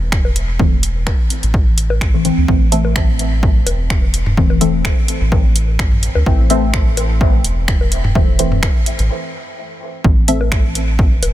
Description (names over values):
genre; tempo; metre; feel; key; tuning
dub techno; 127 BPM; 4/4; swing 54% on 16ths; A minor; A4 = 440 Hz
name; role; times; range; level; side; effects
deep mellow chord stab; stabs; 0.0-11.3 s; E3 to C4; -21 LUFS; left 2 dB; chorus, phaser, cassette tape, sidechain pumping, dub echo
round analog bass; bass; 0.0-11.3 s; E1 to D2; -17 LUFS; equal; sidechain pumping
deep house drum kit; drums; 0.1-11.3 s; finger snaps, hi-hat; -24 LUFS; equal; overdrive, soft clipping on snare, dub echo
electronic kick drum; drums; 0.1-11.1 s; none; -15 LUFS; equal; overdrive
electronic bongos and toms; percussion; 0.2-11.3 s; none; -24 LUFS; left 2 dB; sidechain pumping on perc, sidechain pumping on toms, dub echo
filtered dub chord stab; riff; 2.7-6.6, 10.3-10.4 s; A4 to E5; -27 LUFS; right 1 dB; phaser, sidechain pumping, dub echo
room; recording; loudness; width
little or no reverb; dense, heavily limited modern master; -12 LUFS; side -14 dB against mid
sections
0.0-10.0 A section; 10.0-11.3 A section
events
break 9.1-10.0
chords
0.0 Am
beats
0.12 | 0.59 1.07 1.54 2.01 | 2.48 2.96 3.43 3.90 | 4.37 4.85 5.32 5.79 | 6.26 6.74 7.21 7.68 | 8.15 8.63 9.10 9.57 | 10.04 10.52 10.99